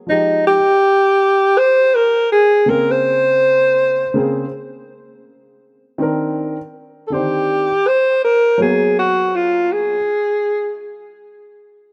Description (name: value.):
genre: hip hop.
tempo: 81 BPM.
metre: 4/4.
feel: swing 62% on 16ths.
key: unclear.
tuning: A4 = 440 Hz.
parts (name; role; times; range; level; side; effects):
breathy alto saxophone; melody; 0.1-10.8 s; Eb4 to C5; -16 LUFS; equal; none.
dark upright piano; accompaniment; 0.1-10.0 s; Db3 to C5; -23 LUFS; equal; none.
room: moderate plate reverb, RT60 2.9 s.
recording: rough home demo mix.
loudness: -15 LUFS.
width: mono.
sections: 0.0-11.9 A section.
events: none.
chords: 0.1 Fm9; 2.7 Bbm9; 6.0 Cm9; 8.6 Abm9.